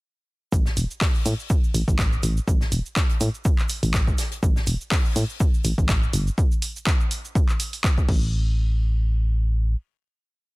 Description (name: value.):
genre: piano house.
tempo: 123 BPM.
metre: 4/4.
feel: swing 55% on 16ths.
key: unclear.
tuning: A4 = 440 Hz.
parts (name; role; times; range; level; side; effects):
solid FM bass; bass; 0.5-9.8 s; E1 to A2; -22 LUFS; equal; sidechain pumping.
electronic kick drum; drums; 0.5-8.2 s; none; -21 LUFS; equal; none.
natural country drum kit; drums; 0.5-6.3 s; hi-hat, shaker, snare drum; -36 LUFS; left 1 dB; high-pass filter on hats, high-pass filter on snare, high-pass filter on perc, high-pass filter on room.
punchy analog drum machine; drums; 0.5-8.2 s; crash cymbal, handclaps, hi-hat, shaker; -29 LUFS; equal; none.
room: studio ambience.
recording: dense, heavily limited modern master.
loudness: -20 LUFS.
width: side -24 dB against mid.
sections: 0.5-8.3 drop; 8.3-10.6 final hit.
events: drop 0.5-8.3.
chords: none.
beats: | 0.53 1.01 1.50 1.99 | 2.48 2.96 3.45 3.94 | 4.43 4.92 5.40 5.89 | 6.38 6.87 7.35 7.84 | 8.33 8.82 9.30.